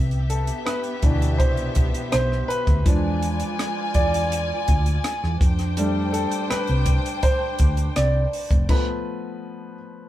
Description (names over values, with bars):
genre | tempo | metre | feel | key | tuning
lush 1970s-style soul | 82 BPM | 4/4 | straight | unclear | A4 = 440 Hz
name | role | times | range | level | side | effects
warm studio string section | second line | 0.0-8.7 s | B3 to G#5 | -29 LUFS | left 1 dB | none
hollow-body short-scale fingered electric bass | bass | 0.0-8.7 s | F1 to F2 | -23 LUFS | equal | none
compact cocktail drum kit | drums | 0.1-8.9 s | crash cymbal, hi-hat, kick drum, rim click | -22 LUFS | equal | none
clear concert grand piano | accompaniment | 0.3-10.1 s | B2 to D5 | -26 LUFS | equal | none
room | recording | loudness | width
light reverb | band playing live in one room | -19 LUFS | side -13 dB against mid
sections
0.0-10.1 A section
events
grand piano solo 0.0-10.1; stop 8.7-10.1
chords
0.0 Cmaj9; 2.9 E7b9; 5.4 F69; 8.7 F